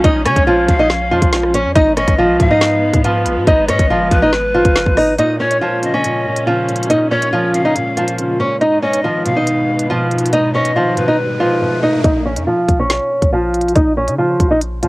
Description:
hip hop, drill; 140 BPM; 4/4; half-time; Bb phrygian; A4 = 440 Hz
nylon-string guitar; melody; 0.0-14.9 s; F3 to Eb5; -14 LUFS; equal; low-pass filter, cassette tape, analog delay
clear studio string section; sustained chords; 0.0-12.0 s; Bb2 to Db4; -26 LUFS; equal; cassette tape
hard-hitting 808-style bass; bass; 0.0-5.2, 12.0-14.9 s; Gb1 to Db3; -21 LUFS; equal
drill drum kit; drums; 0.0-14.9 s; hi-hat, kick drum, rim click, snare drum; -16 LUFS; equal; cassette tape
breathy bright large pan pipes; second line; 0.3-12.0 s; Cb5 to F5; -20 LUFS; left 2 dB; cassette tape, analog delay
felt-muted upright piano; accompaniment; 5.2-12.1 s; Ab2 to F3; -22 LUFS; right 1 dB; low-pass filter, cassette tape
riser; sound effects; 10.1-12.0 s; -29 LUFS; right 1 dB
light reverb; home recording on cassette; -12 LUFS; side -22 dB against mid
0.0-5.2 A section; 5.2-12.0 B section; 12.0-14.9 C section
riser 10.1-12.0; drums muted 11.2-12.0; filter sweep 12.0-14.9
0.0 Bbm7; 1.8 Abm; 5.2 Bbm7; 8.6 Abm; 12.0 Bbm

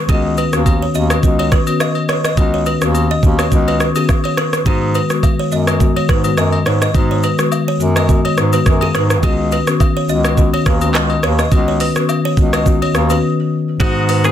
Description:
afrobeats; 105 BPM; 4/4; swing 55% on 16ths; G# minor; A4 = 440 Hz
marimba with soft mallets; accompaniment; 0.1-14.3 s; D#3 to F#4; -17 LUFS; left 4 dB
buzzing kalimba; riff; 0.1-14.2 s; G#4 to D#5; -24 LUFS; right 8 dB; tape echo
warm bass clarinet; bass; 0.1-14.3 s; C#2 to G#2; -18 LUFS; right 1 dB
afro-pop drum kit; drums; 0.1-14.3 s; handclaps, hi-hat, kick drum, rim click, shaker; -15 LUFS; right 1 dB
agogo bells and woodblock; percussion; 0.1-14.2 s; -24 LUFS; left 6 dB
clean electric guitar; melody; 13.8-14.3 s; F#4 to G#4; -20 LUFS; right 1 dB
warm horn section; second line; 13.8-14.3 s; B3 to D#5; -27 LUFS; left 4 dB
moderate studio reverb, RT60 0.6 s; dense, heavily limited modern master; -12 LUFS; side -10 dB against mid
0.0-4.7 A section; 4.7-13.8 B section
break 13.2-13.8
0.1 C#9sus4; 4.7 G#m7; 9.2 C#9sus4; 13.8 G#m7

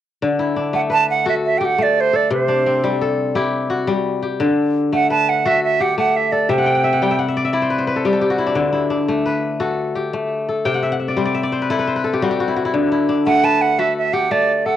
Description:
west african traditional, West African string and xylophone music; 115 BPM (dotted quarters); 12/8; straight; D mixolydian; A4 = 439 Hz
kora; arpeggios; 0.2-14.8 s; C3 to G5; -17 LUFS; left 3 dB
bright concert flute; melody; 0.8-7.2, 13.3-14.8 s; C5 to A5; -16 LUFS; right 5 dB; cassette tape
wet booth ambience, RT60 0.3 s; home recording on cassette; -16 LUFS; side -11 dB against mid
0.2-14.8 A section
kora fill 6.5-8.6, 10.7-12.7
0.2 D; 2.3 C; 4.4 D; 6.5 C; 8.6 D; 10.7 C; 12.7 D

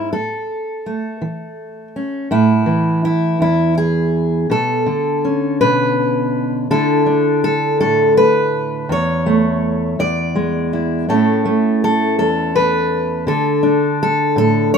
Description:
folk, solo fingerstyle acoustic guitar; 55 BPM (dotted quarters); 6/8; straight; A major; A4 = 439 Hz
fingerpicked steel-string acoustic guitar; solo; 0.0-14.8 s; E2 to D5; -14 LUFS; equal
moderate studio reverb, RT60 0.7 s; minimal, uncompressed stereo recording; -14 LUFS; side -6 dB against mid
0.0-2.3 A section; 2.3-14.8 B section
0.1 A; 2.3 A5; 4.5 Bmadd9; 6.7 Dsus2; 8.9 A/E; 10.0 E; 11.1 A; 13.3 D5

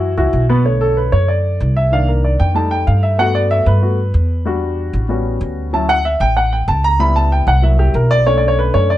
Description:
Afro-Cuban jazz; 189 BPM; 4/4; straight; B minor; A4 = 440 Hz
warm baby grand piano; accompaniment; 0.0-9.0 s; B2 to B5; -16 LUFS; equal
upright bass; bass; 0.0-9.0 s; A1 to G2; -15 LUFS; equal
light reverb; nothing above 10.5 kHz; -13 LUFS; side -14 dB against mid
0.7-9.0 A section
grand piano solo 0.7-9.0
0.0 F#5; 0.7 Bm9; 1.9 Cm7; 2.6 F9; 3.2 Gmaj9; 4.5 Em7; 5.1 A13; 5.7 Dmaj7; 7.0 C#m7b5; 7.6 C7#11; 8.3 Bm9

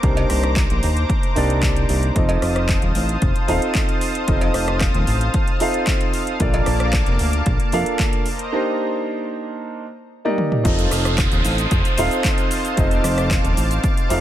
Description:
nu-disco, nu disco; 113 BPM; 4/4; straight; F mixolydian; A4 = 440 Hz
warm concert grand piano; accompaniment; 0.0-14.2 s; Bb3 to F5; -23 LUFS; right 1 dB; sidechain pumping, ping-pong delay
lush unison pad; sustained chords; 0.0-14.2 s; Bb3 to Eb6; -26 LUFS; equal; chorus, sidechain pumping
fat analog bass; bass; 0.0-14.2 s; Eb1 to Eb2; -21 LUFS; equal; tube saturation, sidechain pumping
electronic kick drum; drums; 0.0-13.9 s; -21 LUFS; equal; overdrive
house drum kit; drums; 0.0-14.2 s; cabasa, handclaps, hi-hat, rim click, toms; -27 LUFS; left 1 dB; overdrive
cowbell; percussion; 0.2-6.6 s; -30 LUFS; equal
downlifter; sound effects; 10.7-14.2 s; -28 LUFS; right 1 dB
digital ambience; -17 LUFS; side -12 dB against mid
0.0-10.7 A section; 10.7-14.2 B section
break 8.5-10.7; drum fill 10.3-10.7; drop 10.7-14.2
0.0 Cm9; 2.2 F7; 6.4 Bbmaj7; 8.3 Cm9; 10.7 F7

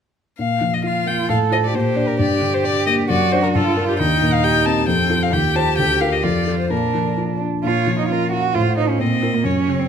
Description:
quick classical-period movement for piano trio; 133 BPM; 2/4; rubato; Bb major; A4 = 439 Hz
warm violin; melody; 0.4-9.9 s; G4 to A5; -22 LUFS; left 6 dB
dark baby grand piano; accompaniment; 0.4-9.9 s; D2 to D5; -19 LUFS; left 1 dB
warm cello; second line; 0.8-9.9 s; Bb3 to A4; -21 LUFS; right 7 dB
moderate recital hall reverb, RT60 1.8 s; close, detailed microphones; -16 LUFS; side -7 dB against mid
0.4-7.6 A section; 7.6-9.9 B section
0.4 Bb5; 1.3 F/A; 1.7 Bb; 2.2 Gm; 3.1 D/F#; 3.6 Gm; 4.0 Cm7/Eb; 4.9 F; 5.3 F7/Eb; 5.8 Bb/D; 6.2 F; 6.7 Bb; 7.6 Bbm; 8.6 F/A; 9.0 Bb5

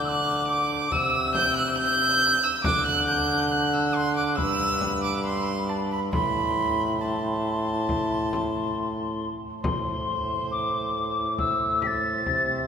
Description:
classical, renaissance-style consort dance; 69 BPM; 4/4; straight; A dorian; A4 = 439 Hz
mellow hollow soprano recorder; melody; 0.0-12.7 s; B5 to B6; -28 LUFS; left 4 dB
warm violin; second line; 0.0-12.7 s; C5 to G6; -27 LUFS; right 3 dB
warm trombone; bass; 0.0-12.7 s; G2 to D3; -28 LUFS; equal
frame drum; percussion; 0.9-12.7 s; -34 LUFS; left 1 dB
wet cathedral reverb, RT60 4.4 s; recorded in a church or concert hall; -22 LUFS; side -7 dB against mid
0.0-9.6 A section; 9.6-12.7 B section
0.0 D; 0.9 C; 2.6 D; 4.4 G; 6.1 Am

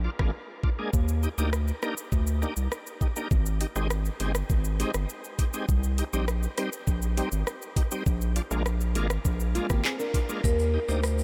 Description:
dancehall; 101 BPM; 4/4; straight; Eb major; A4 = 440 Hz
bright tonewheel organ; accompaniment; 0.0-11.0 s; G3 to Ab4; -37 LUFS; equal; overdrive, chorus vibrato, slow rotary speaker, sidechain pumping
round analog bass; bass; 0.0-11.2 s; G1 to Eb2; -29 LUFS; equal
island pop drum kit; drums; 0.2-11.2 s; handclaps, hi-hat, kick drum, rim click, shaker; -32 LUFS; equal
nylon-string guitar; arpeggios; 9.5-10.4 s; Ab3 to Bb4; -36 LUFS; equal
marimba with medium hard mallets; melody; 10.4-11.0 s; Bb4 to C5; -32 LUFS; equal; analog delay
egg shaker; percussion; 10.4-11.2 s; -42 LUFS; equal
light reverb; -28 LUFS; mono
0.9-10.4 A section
hi-hats muted 10.4-11.2
0.0 Bb7; 0.9 Ebmaj7; 3.3 Abmaj7; 5.7 Cm; 8.1 Bb7; 10.4 Ebmaj7

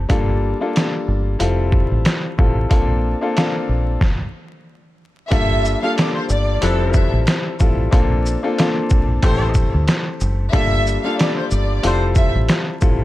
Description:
hip hop, boom-bap hip-hop; 92 BPM; 4/4; swing 56% on 16ths; G dorian; A4 = 441 Hz
deep dub fingered electric bass; bass; 0.0-13.0 s; F1 to D2; -19 LUFS; equal
clear grand piano; accompaniment; 0.1-13.0 s; F3 to A4; -22 LUFS; left 3 dB; cassette tape
trip hop sampler-style drum kit; drums; 0.1-13.0 s; hi-hat, kick drum, shaker, snare drum; -18 LUFS; equal
dark studio violin section; melody; 5.3-12.3 s; C5 to F5; -24 LUFS; right 1 dB; tape echo
warm horn section; stabs; 6.6-12.0 s; E3 to C5; -28 LUFS; left 1 dB; tape echo
light reverb, small room reverb; vinyl crackle; -15 LUFS; side -16 dB against mid
0.0-5.3 A section; 5.3-13.0 B section
stop 4.0-5.3
0.1 Gm7; 1.4 Fmaj9; 2.7 Bbmaj7; 4.0 N.C.; 5.3 Gm7; 6.6 Fmaj9; 7.9 Bbmaj7; 9.2 Am7; 10.5 Gm7; 11.8 Fmaj9

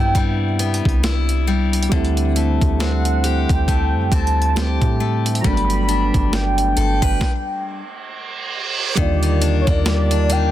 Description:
contemporary R&B; 68 BPM; 4/4; swing 58% on 16ths; G major; A4 = 438 Hz
warm velvety synth lead; melody; 0.0-10.5 s; C#5 to B5; -24 LUFS; right 1 dB; chorus, tape echo
soft electric-piano-like synth keys; accompaniment; 0.0-10.5 s; D3 to G4; -24 LUFS; right 3 dB; chorus
picked steel-string acoustic guitar; arpeggios; 0.0-10.5 s; C3 to B4; -24 LUFS; left 8 dB; tape echo
soft 808-style bass; bass; 0.0-10.5 s; G1 to A2; -19 LUFS; equal
clean 12-bit digital drum machine; drums; 0.1-10.5 s; hi-hat, kick drum, snare drum; -21 LUFS; equal
reverse cymbal; sound effects; 7.7-9.0 s; -24 LUFS; right 5 dB
digital ambience; dense, heavily limited modern master; -16 LUFS; side -13 dB against mid
0.0-9.0 A section; 9.0-10.5 B section
stop 7.2-9.0; reverse cymbal 7.7-9.0
0.0 Cmaj7; 1.9 D7sus4; 5.4 Gmaj7; 9.0 Ebmaj7

